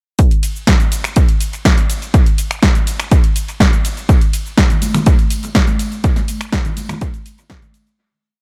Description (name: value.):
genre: house.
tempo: 123 BPM.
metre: 4/4.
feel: straight.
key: none.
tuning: none.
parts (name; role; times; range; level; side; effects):
electronic kick drum; drums; 0.2-7.6 s; none; -15 LUFS; equal; none.
punchy analog drum machine; drums; 0.2-8.0 s; finger snaps, hi-hat, ride cymbal, shaker, snare drum; -22 LUFS; equal; dub echo.
tambourine and congas; percussion; 4.1-8.0 s; none; -25 LUFS; equal; sidechain pumping on perc, dub echo.
room: digital ambience.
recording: echo-heavy mix.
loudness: -15 LUFS.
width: mono.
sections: 0.2-8.0 drop.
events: drop 0.2-8.0; fade-out 5.4-8.0.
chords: none.